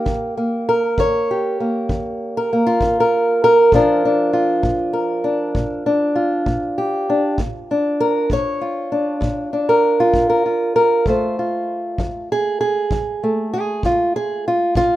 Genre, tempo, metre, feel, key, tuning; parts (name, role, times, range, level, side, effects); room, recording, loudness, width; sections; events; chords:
acoustic country blues, solo or duo; 65 BPM (dotted quarters); 12/8; straight; Bb major; A4 = 439 Hz
fingerpicked old ladder-braced acoustic guitar; melody; 0.0-15.0 s; Bb2 to Db5; -16 LUFS; equal
kick drum; drums; 0.1-14.9 s; -24 LUFS; equal
small room reverb; rough home demo mix; -16 LUFS; side -14 dB against mid
0.0-15.0 A section
0.0 Eb; 3.7 Bb; 11.1 F